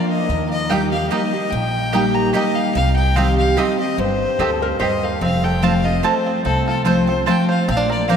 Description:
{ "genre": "bluegrass", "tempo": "146 BPM", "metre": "3/4", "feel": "straight", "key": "unclear", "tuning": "A4 = 440 Hz", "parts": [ { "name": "clear fiddle", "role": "melody", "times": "0.0-8.2 s", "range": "A4 to Bb5", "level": "-22 LUFS", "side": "left 2 dB", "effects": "none" }, { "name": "picked steel-string acoustic guitar", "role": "accompaniment", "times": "0.0-8.2 s", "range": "F2 to G4", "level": "-19 LUFS", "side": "equal", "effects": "none" }, { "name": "upright bass", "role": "bass", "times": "0.3-8.2 s", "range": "F1 to Eb2", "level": "-22 LUFS", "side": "equal", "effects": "none" }, { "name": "bluegrass banjo", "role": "melody", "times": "0.7-8.2 s", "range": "C4 to C5", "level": "-28 LUFS", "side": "right 3 dB", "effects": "none" }, { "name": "mandolin", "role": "stabs", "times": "0.7-8.2 s", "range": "Bb3 to Bb5", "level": "-25 LUFS", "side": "right 5 dB", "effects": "none" }, { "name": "lap resonator guitar", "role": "second line", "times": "4.4-5.2 s", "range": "A4 to C5", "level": "-28 LUFS", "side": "left 2 dB", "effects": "none" } ], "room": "wet cathedral reverb, RT60 6.8 s", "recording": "in a vast, echoing space", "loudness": "-16 LUFS", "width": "side -7 dB against mid", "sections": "0.0-5.2 A section; 5.2-8.2 A section", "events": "none", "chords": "0.3 Eb; 2.8 Cm; 5.2 F", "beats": "| 0.29 0.70 1.11 | 1.52 1.94 2.35 | 2.76 3.17 3.58 | 3.99 4.40 4.81 | 5.22 5.63 6.04 | 6.45 6.86 7.27 | 7.68 8.09" }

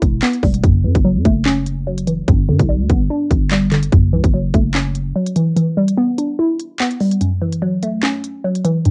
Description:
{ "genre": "hip hop, drill", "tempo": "146 BPM", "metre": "4/4", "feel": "half-time", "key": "F# phrygian", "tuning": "A4 = 441 Hz", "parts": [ { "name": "glassy wavetable pluck", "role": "accompaniment", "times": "0.0-8.9 s", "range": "F#2 to E4", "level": "-19 LUFS", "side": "equal", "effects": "chorus, low-pass filter, cassette tape" }, { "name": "growling 808-style bass", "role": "bass", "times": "0.0-5.1 s", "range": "E1 to G2", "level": "-21 LUFS", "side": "equal", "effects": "none" }, { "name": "drill drum kit", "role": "drums", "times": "0.0-8.9 s", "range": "handclaps, hi-hat, kick drum", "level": "-20 LUFS", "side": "equal", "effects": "none" } ], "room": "light reverb", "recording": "home recording on cassette, nothing above 10.4 kHz", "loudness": "-17 LUFS", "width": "mono", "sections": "0.0-8.9 A section", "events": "filter sweep on synth pluck 0.0-7.2; kick muted 5.6-7.2, 7.2-8.9", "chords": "0.0 Em7; 0.6 F#m7; 2.3 G; 3.9 F#m7; 5.6 Em7; 7.2 F#m7", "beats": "0.22 | 0.64 1.05 1.46 1.87 | 2.28 2.69 3.10 3.51 | 3.92 4.33 4.75 5.16 | 5.57 5.98 6.39 6.80 | 7.21 7.62 8.03 8.44 | 8.85" }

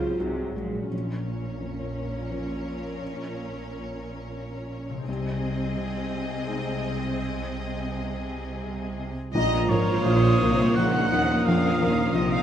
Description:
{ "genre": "cinematic, emotional film score for orchestra", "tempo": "86 BPM", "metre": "3/4", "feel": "rubato", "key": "Bb minor", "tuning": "A4 = 441 Hz", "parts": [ { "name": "rich studio violin section", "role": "melody", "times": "0.0-12.4 s", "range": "Bb4 to Eb5", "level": "-38 LUFS", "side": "left 4 dB", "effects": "none" }, { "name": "warm studio violin section", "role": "second line", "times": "0.0-12.4 s", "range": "Ab4 to Gb5", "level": "-35 LUFS", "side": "left 3 dB", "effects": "none" }, { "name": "felt-muted upright piano", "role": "accompaniment", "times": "0.0-12.4 s", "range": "Bb1 to Bb4", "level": "-29 LUFS", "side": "left 2 dB", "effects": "none" }, { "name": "warm studio viola section", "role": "accompaniment", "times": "0.0-12.4 s", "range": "Gb3 to F4", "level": "-31 LUFS", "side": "right 2 dB", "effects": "none" }, { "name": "dark French horn section", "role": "sustained chords", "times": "0.0-0.2, 9.3-12.4 s", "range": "F3 to C4", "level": "-34 LUFS", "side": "left 4 dB", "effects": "none" }, { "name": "concert harp", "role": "arpeggios", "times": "0.0-12.4 s", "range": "Ab2 to Bb4", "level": "-36 LUFS", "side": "left 5 dB", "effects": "none" }, { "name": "rich studio double bass section", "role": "bass", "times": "0.0-12.4 s", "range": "Ab1 to F2", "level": "-32 LUFS", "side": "right 2 dB", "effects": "none" }, { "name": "warm studio cello section", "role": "bass", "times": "0.0-12.4 s", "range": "Ab2 to F3", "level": "-34 LUFS", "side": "right 3 dB", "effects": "none" }, { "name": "clear oboe", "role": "second line", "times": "9.3-12.4 s", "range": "Db5 to Gb5", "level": "-29 LUFS", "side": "right 1 dB", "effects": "none" }, { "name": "timpani", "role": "percussion", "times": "9.3-10.4 s", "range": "Bb2", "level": "-34 LUFS", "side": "right 1 dB", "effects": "none" }, { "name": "bright silver concert flute", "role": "second line", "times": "9.4-12.4 s", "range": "Bb5 to Eb6", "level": "-31 LUFS", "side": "equal", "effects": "none" } ], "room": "wet scoring stage reverb, RT60 1.5 s", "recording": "none", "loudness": "-24 LUFS", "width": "side -10 dB against mid", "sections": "0.9-9.3 A section; 9.3-12.4 B section", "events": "none", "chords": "0.0 Ab7; 0.9 Bbm; 5.1 Ab/C; 9.3 Bbm", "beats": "0.20 | 0.93 1.62 2.32 | 3.01 3.70 4.39 | 5.08 5.76 6.46 | 7.19 7.92 8.63 | 9.35 10.04 10.77 | 11.46 12.15" }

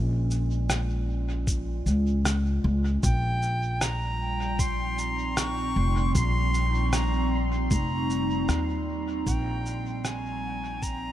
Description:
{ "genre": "ambient dub", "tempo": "77 BPM", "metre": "4/4", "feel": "straight", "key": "unclear", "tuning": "A4 = 440 Hz", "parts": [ { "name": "warbly tape-like pad", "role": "sustained chords", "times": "0.0-11.1 s", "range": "Bb2 to Eb4", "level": "-32 LUFS", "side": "right 1 dB", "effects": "chorus, built-in reverb" }, { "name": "upright bass", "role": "bass", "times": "0.0-11.1 s", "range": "F1 to Eb2", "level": "-26 LUFS", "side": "equal", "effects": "none" }, { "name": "electronic cabasa and rim click", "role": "drums", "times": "0.3-11.0 s", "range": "none", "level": "-32 LUFS", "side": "equal", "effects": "dub echo" }, { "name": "electronic kick drum", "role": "drums", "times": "1.5-11.0 s", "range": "none", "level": "-28 LUFS", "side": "equal", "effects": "none" }, { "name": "bright reedy silver concert flute", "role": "melody", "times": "3.0-11.1 s", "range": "G5 to Db6", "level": "-31 LUFS", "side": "equal", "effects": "dub echo" } ], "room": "light reverb", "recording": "none", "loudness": "-24 LUFS", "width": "side -12 dB against mid", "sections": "0.0-11.1 A section", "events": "fade-out 7.2-11.1", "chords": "0.0 Bbm7; 3.0 Cm", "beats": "0.69 1.47 2.25 | 3.03 3.81 4.59 5.37 | 6.15 6.93 7.71 8.49 | 9.27 10.04 10.82" }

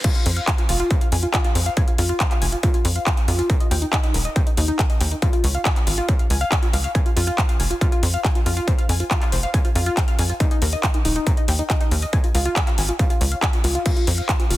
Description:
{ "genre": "uplifting trance", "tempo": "139 BPM", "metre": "4/4", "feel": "straight", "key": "unclear", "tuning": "A4 = 440 Hz", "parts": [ { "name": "tight sequenced synth", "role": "arpeggios", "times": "0.0-14.6 s", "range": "Eb4 to Ab5", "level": "-26 LUFS", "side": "left 1 dB", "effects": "chorus, sidechain pumping, digital delay" }, { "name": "electronic kick drum", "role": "drums", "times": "0.0-14.4 s", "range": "none", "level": "-20 LUFS", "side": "equal", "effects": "distortion, overdrive, small room ambience" }, { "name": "techno drum kit", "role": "drums", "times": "0.0-14.6 s", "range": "crash cymbal, handclaps, hi-hat", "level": "-25 LUFS", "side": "equal", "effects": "small room ambience" }, { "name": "tight sequencer bass", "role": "bass", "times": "0.3-14.6 s", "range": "Eb1 to F2", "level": "-21 LUFS", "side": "equal", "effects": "sidechain pumping" } ], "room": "little or no reverb", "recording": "dense, heavily limited modern master, high-pass filter", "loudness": "-18 LUFS", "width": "side -16 dB against mid", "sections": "0.0-14.6 A section", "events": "drop 0.0-14.6", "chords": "0.0 N.C.; 5.2 Db; 7.0 N.C.; 12.1 Db; 13.9 N.C.", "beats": "| 0.04 0.47 0.91 1.34 | 1.77 2.20 2.63 3.06 | 3.50 3.93 4.36 4.79 | 5.22 5.66 6.09 6.52 | 6.95 7.38 7.81 8.24 | 8.68 9.11 9.54 9.97 | 10.40 10.84 11.27 11.70 | 12.13 12.56 12.99 13.43 | 13.86 14.29" }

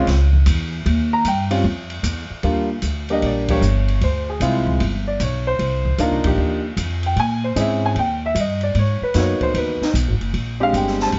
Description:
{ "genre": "jazz piano trio", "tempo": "152 BPM", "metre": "4/4", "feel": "swing 66% on 8ths", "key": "Eb major", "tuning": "A4 = 438 Hz", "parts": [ { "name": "warm grand piano", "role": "melody", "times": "0.0-11.1 s", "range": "G3 to Bb5", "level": "-23 LUFS", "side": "equal", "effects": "none" }, { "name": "upright bass", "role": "bass", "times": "0.0-11.2 s", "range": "Gb1 to Bb2", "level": "-22 LUFS", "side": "equal", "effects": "none" }, { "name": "open jazz drum kit", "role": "drums", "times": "0.1-11.2 s", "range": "hi-hat, kick drum, ride cymbal, snare drum", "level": "-30 LUFS", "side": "equal", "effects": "none" } ], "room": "light reverb", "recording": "nothing above 7.7 kHz", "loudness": "-20 LUFS", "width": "mono", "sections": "0.0-2.4 A section; 2.4-11.2 B section", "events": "band accent 3.4, 6.2", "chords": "0.0 N.C.; 0.9 Ebadd9; 2.4 Ebmaj7; 4.0 Dm7b5; 4.8 G; 5.6 Cm11; 7.2 Bbm7b5; 8.0 Eb; 8.8 Abm7; 10.3 Bb13", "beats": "0.07 0.47 | 0.86 1.25 1.65 2.04 | 2.43 2.83 3.22 3.61 | 4.01 4.40 4.80 5.19 | 5.59 5.98 6.38 6.77 | 7.17 7.57 7.96 8.36 | 8.75 9.15 9.55 9.94 | 10.34 10.74 11.13" }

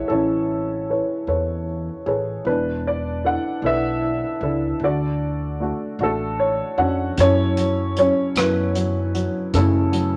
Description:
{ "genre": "acoustic folk-pop ballad", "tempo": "51 BPM (dotted quarters)", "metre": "6/8", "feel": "straight", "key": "F# minor", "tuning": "A4 = 439 Hz", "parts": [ { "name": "warm upright piano", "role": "melody", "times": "0.0-10.2 s", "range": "C#3 to F#5", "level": "-23 LUFS", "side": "equal", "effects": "none" }, { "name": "upright bass", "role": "bass", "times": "0.1-10.2 s", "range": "E1 to F#2", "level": "-27 LUFS", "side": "equal", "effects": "none" }, { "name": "unplugged drum kit", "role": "drums", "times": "7.2-10.1 s", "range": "hi-hat, kick drum, rim click", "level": "-30 LUFS", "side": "equal", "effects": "none" } ], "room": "light reverb", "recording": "none", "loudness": "-22 LUFS", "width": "mono", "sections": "0.0-7.2 A section; 7.2-10.2 B section", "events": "upright piano fill 6.0-7.2", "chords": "0.0 Amaj9; 2.5 E7sus4; 4.8 Dmaj7; 7.2 F#m7", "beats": "| 0.10 1.28 | 2.46 3.63 | 4.81 5.99 | 7.18 8.36 | 9.54" }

